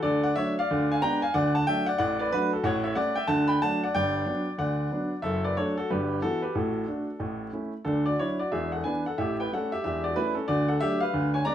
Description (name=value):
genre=jazz, stride piano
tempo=184 BPM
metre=4/4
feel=swing 64% on 8ths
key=D major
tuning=A4 = 441 Hz
part: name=clear baby grand piano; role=solo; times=0.0-11.5 s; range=E1 to B5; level=-24 LUFS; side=equal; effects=none
room=wet studio reverb, RT60 0.6 s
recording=band playing live in one room, vinyl crackle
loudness=-25 LUFS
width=side -10 dB against mid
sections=0.0-7.9 A section; 7.9-11.5 A section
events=none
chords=0.0 D; 0.7 Ddim7; 1.3 D; 2.6 A7; 3.3 D; 3.9 Gmaj7; 5.3 D/F#; 5.9 Em/G; 6.6 D/A; 7.2 A; 7.9 D; 8.5 E7; 9.2 A7; 10.5 D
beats=| 0.03 0.36 0.68 1.01 | 1.34 1.66 1.99 2.32 | 2.64 2.97 3.30 3.62 | 3.95 4.28 4.60 4.93 | 5.26 5.58 5.91 6.24 | 6.56 6.89 7.21 7.54 | 7.87 8.20 8.52 8.85 | 9.18 9.50 9.83 10.16 | 10.48 10.81 11.14 11.46